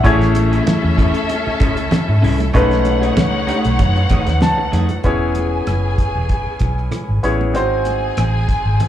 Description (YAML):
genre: lush 1970s-style soul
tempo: 96 BPM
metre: 4/4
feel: swing 54% on 16ths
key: E major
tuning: A4 = 441 Hz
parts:
  - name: dark studio string section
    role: second line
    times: 0.0-8.9 s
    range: C#4 to G#5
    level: -23 LUFS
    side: left 2 dB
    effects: plate reverb, slapback echo
  - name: bright concert grand piano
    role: accompaniment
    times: 0.0-8.9 s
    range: G#3 to A5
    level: -20 LUFS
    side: left 1 dB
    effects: plate reverb, slapback echo
  - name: electric guitar through a small old amp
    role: riff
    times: 0.0-4.9 s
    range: A3 to G#4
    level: -25 LUFS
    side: equal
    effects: slapback echo
  - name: vintage muted fingered electric bass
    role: bass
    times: 0.0-8.8 s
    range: E1 to G#2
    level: -18 LUFS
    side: equal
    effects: none
  - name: cloth-damped thuddy drum kit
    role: drums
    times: 0.0-8.9 s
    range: hi-hat, kick drum, rim click, snare drum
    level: -18 LUFS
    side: equal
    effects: none
  - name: congas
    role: percussion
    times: 0.4-8.9 s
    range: none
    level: -27 LUFS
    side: right 6 dB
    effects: slapback echo
room: light reverb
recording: live gig heard through the venue's PA, club ambience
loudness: -14 LUFS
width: side -11 dB against mid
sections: 0.0-5.0 A section; 5.0-8.9 B section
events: grand piano fill 4.1-5.0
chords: 0.0 Amaj7; 2.5 B13; 5.0 E6; 7.5 G#7